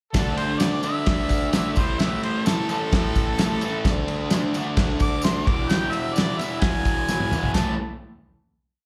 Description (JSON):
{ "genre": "garage rock duo or trio", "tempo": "130 BPM", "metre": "4/4", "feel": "straight", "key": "unclear", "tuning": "A4 = 440 Hz", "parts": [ { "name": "clear harmonica", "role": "melody", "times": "0.1-7.8 s", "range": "A4 to D6", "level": "-30 LUFS", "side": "equal", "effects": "overdrive" }, { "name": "fuzz guitar", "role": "riff", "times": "0.1-7.7 s", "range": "E2 to D4", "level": "-28 LUFS", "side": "equal", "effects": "distortion, slapback echo" }, { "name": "cloth-damped thuddy drum kit", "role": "drums", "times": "0.1-7.7 s", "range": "kick drum, ride cymbal, snare drum, toms", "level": "-26 LUFS", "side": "equal", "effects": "none" }, { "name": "tambourine", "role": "percussion", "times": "0.1-7.8 s", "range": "none", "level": "-42 LUFS", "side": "equal", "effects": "none" } ], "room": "light reverb", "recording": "live gig heard through the venue's PA, club reverb", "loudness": "-23 LUFS", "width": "mono", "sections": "0.2-7.5 pre-chorus; 7.5-8.9 final chord", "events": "drum fill 7.1-7.5", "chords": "0.2 D5; 1.8 A5; 3.9 D5; 5.5 E; 7.5 A5" }